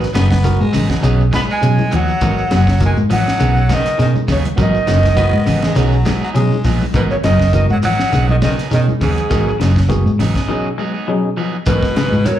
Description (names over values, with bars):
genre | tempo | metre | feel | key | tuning
afrobeat | 102 BPM | 4/4 | swing 54% on 16ths | G# dorian | A4 = 440 Hz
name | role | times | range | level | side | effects
mellow alto recorder | melody | 0.0-12.4 s | G#4 to B5 | -20 LUFS | equal | slapback echo
edgy tenor saxophone | second line | 0.0-12.4 s | G#2 to B3 | -25 LUFS | right 3 dB | slapback echo
barky tine electric piano | accompaniment | 0.0-12.4 s | B2 to A#4 | -24 LUFS | moving between left 3 dB and right 6 dB | auto-pan, slapback echo
clean electric guitar | arpeggios | 0.0-12.4 s | C#3 to G#3 | -23 LUFS | left 6 dB | slapback echo
electric guitar at the edge of break-up | stabs | 0.0-12.2 s | F#3 to G#4 | -25 LUFS | right 7 dB | slapback echo, analog delay
tight funk drum kit | drums | 0.0-12.4 s | hi-hat, kick drum, snare drum | -22 LUFS | equal | none
shekere | percussion | 0.0-12.4 s | none | -28 LUFS | right 2 dB | none
raspy baritone saxophone | second line | 0.1-1.2, 5.2-6.8 s | F#3 to B3 | -24 LUFS | left 3 dB | slapback echo
hollow-body short-scale fingered electric bass | bass | 0.1-12.2 s | F#1 to B2 | -15 LUFS | equal | none
congas | percussion | 0.1-12.4 s | none | -24 LUFS | right 1 dB | none
room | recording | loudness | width
light reverb | live gig heard through the venue's PA, club reverb | -12 LUFS | side -11 dB against mid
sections
0.0-11.7 A section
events
break 10.5-11.7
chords
0.0 G#m7; 1.0 B6; 2.2 G#m7; 3.4 B6; 4.6 G#m7; 5.8 B6; 6.9 G#m7; 8.1 B6; 9.3 G#m7; 10.5 B6; 11.7 G#m7